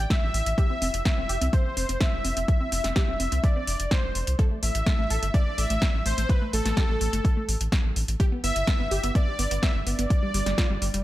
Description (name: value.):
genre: progressive house.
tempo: 126 BPM.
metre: 4/4.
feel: straight.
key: A minor.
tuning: A4 = 440 Hz.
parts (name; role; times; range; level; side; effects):
round analog bass; bass; 0.0-11.0 s; F1 to C2; -28 LUFS; equal; sidechain pumping.
soft supersaw; melody; 0.1-11.0 s; A4 to E5; -30 LUFS; equal; dub echo.
deep house drum kit; drums; 0.1-11.0 s; hi-hat, snare drum; -30 LUFS; equal; overdrive.
electronic kick drum; drums; 0.1-10.7 s; none; -23 LUFS; equal; overdrive.
wide unison pluck; arpeggios; 0.6-11.0 s; G3 to A4; -33 LUFS; equal; sidechain pumping, dub echo.
room: digital ambience.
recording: none.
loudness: -22 LUFS.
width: side -15 dB against mid.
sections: 0.0-11.0 A section.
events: filter sweep on synth pluck 0.0-11.0.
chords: 0.0 A5; 0.6 F5; 4.4 A5; 8.2 Em/G; 10.1 G5.